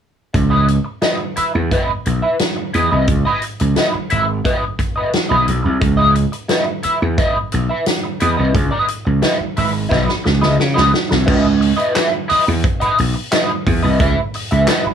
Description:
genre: funk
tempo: 88 BPM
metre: 4/4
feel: straight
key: C# minor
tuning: A4 = 441 Hz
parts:
  - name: electric guitar at the edge of break-up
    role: accompaniment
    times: 0.3-14.9 s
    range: E4 to E5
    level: -17 LUFS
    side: equal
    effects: wah, analog chorus
  - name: gritty slap bass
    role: bass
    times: 0.3-14.9 s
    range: G#1 to C#3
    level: -16 LUFS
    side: right 1 dB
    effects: overdrive
  - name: swinging big-band drum kit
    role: drums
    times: 0.3-14.8 s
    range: crash cymbal, handclaps, hi-hat, kick drum, snare drum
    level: -19 LUFS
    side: equal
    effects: none
room: light reverb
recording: none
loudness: -14 LUFS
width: side -8 dB against mid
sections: 0.3-11.3 A section; 11.3-14.9 B section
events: drum fill 9.9-11.3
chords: 0.3 C#m9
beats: | 0.34 1.03 1.71 2.40 | 3.08 3.76 4.45 5.13 | 5.81 6.50 7.18 7.86 | 8.55 9.23 9.91 10.60 | 11.28 11.96 12.64 13.32 | 14.01 14.69

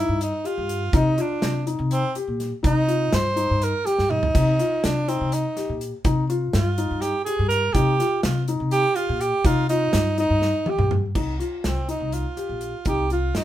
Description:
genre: progressive instrumental, band music in an uneven meter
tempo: 247 BPM (eighths)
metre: 7/8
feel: straight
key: C minor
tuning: A4 = 443 Hz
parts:
  - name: clear tenor saxophone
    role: melody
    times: 0.0-13.4 s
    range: C4 to C5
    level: -24 LUFS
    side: right 2 dB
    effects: none
  - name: felt-muted upright piano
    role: arpeggios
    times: 0.0-13.4 s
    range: Eb4 to G4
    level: -28 LUFS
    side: left 4 dB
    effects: none
  - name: upright bass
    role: bass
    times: 0.0-13.4 s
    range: Bb1 to C3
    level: -24 LUFS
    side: left 1 dB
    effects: none
  - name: natural country drum kit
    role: drums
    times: 0.2-13.4 s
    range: crash cymbal, hi-hat, kick drum, snare drum, toms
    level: -26 LUFS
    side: right 1 dB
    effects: none
room: moderate studio reverb, RT60 0.8 s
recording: minimal, uncompressed stereo recording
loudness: -20 LUFS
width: side -12 dB against mid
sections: 0.0-11.2 A section; 11.2-13.4 B section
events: tenor saxophone solo 0.0-11.2; drum fill 4.0-4.3, 10.4-11.2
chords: 0.0 Cm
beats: 0.22 0.46 0.70 | 0.95 1.19 1.43 1.68 1.92 2.16 2.40 | 2.65 2.89 3.13 3.38 3.62 3.86 4.11 | 4.35 4.59 4.84 5.08 5.32 5.57 5.81 | 6.05 6.29 6.54 6.78 7.02 7.26 7.51 | 7.75 7.99 8.24 8.48 8.72 8.97 9.21 | 9.45 9.70 9.94 10.18 10.43 10.67 10.91 | 11.16 11.40 11.64 11.89 12.13 12.37 12.62 | 12.86 13.11 13.35

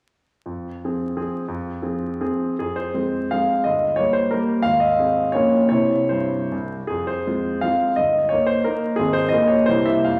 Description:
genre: classical, romantic triple-time dance for piano with dotted rhythms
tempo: 139-194 BPM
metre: 3/4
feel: rubato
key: F minor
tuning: A4 = 439 Hz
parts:
  - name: clear concert grand piano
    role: solo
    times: 0.5-10.2 s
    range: G1 to F5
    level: -21 LUFS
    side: equal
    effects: none
room: wet recital hall reverb, RT60 1.4 s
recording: vinyl crackle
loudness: -21 LUFS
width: mono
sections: 0.5-2.6 A section; 2.6-10.2 B section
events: none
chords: 0.5 Fm; 3.7 Eb/G; 4.6 Ab; 5.3 Bbm; 5.7 C; 6.9 Fm; 8.0 Eb/G; 9.0 Ab; 9.3 Bbm; 9.7 C7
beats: | 0.46 0.83 1.17 | 1.48 1.82 2.20 | 2.59 2.95 3.33 | 3.66 4.00 4.33 | 4.64 4.98 5.34 | 5.70 6.10 6.52 | 6.90 7.26 7.63 | 7.99 8.33 8.66 | 8.99 9.32 9.69 | 10.08

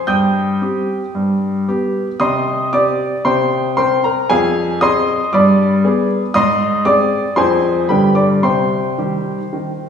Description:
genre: classical-period piano sonatina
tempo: 115 BPM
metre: 4/4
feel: uneven beats, rubato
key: C minor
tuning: A4 = 438 Hz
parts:
  - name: clear baby grand piano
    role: solo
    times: 0.0-9.9 s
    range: F2 to G6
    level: -13 LUFS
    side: equal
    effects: none
room: wet recital hall reverb, RT60 1.7 s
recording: heard from further back in the room, small room ambience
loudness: -13 LUFS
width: side -7 dB against mid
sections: 0.0-9.9 A section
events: none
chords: 0.1 Cm/G; 1.1 G; 2.2 Cm; 3.3 C5; 4.3 Fm; 5.3 G; 6.4 Ab; 7.4 Fm; 7.9 G; 8.4 Cm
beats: | 0.06 0.60 1.14 1.68 | 2.21 2.74 3.26 3.78 | 4.30 4.82 5.34 5.85 | 6.35 6.86 7.37 7.89 | 8.42 8.97 9.52

